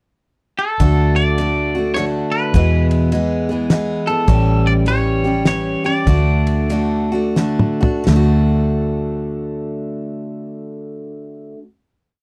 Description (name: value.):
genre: honky-tonk and classic country.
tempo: 82-104 BPM.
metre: 3/4.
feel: swing 64% on 8ths.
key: D major.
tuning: A4 = 439 Hz.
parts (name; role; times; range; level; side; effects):
twangy electric guitar; melody; 0.6-7.3 s; A4 to D5; -24 LUFS; equal; none.
picked steel-string acoustic guitar; accompaniment; 0.8-11.7 s; E2 to G#4; -22 LUFS; equal; none.
vintage muted fingered electric bass; bass; 0.8-11.3 s; A1 to E2; -20 LUFS; equal; none.
damped 70s drum kit; drums; 0.8-8.3 s; china cymbal, kick drum, ride cymbal, rim click, snare drum, toms; -19 LUFS; equal; none.
room: little or no reverb.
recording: dry, close 1970s-style studio recording.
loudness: -17 LUFS.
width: mono.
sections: 0.0-0.8 pickup bar; 0.8-8.1 A section; 8.1-12.2 final chord.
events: slowing down 4.3-8.1; drum fill 7.4-8.1.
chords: 0.0 N.C.; 0.8 D; 2.5 E; 4.3 A7; 6.1 D.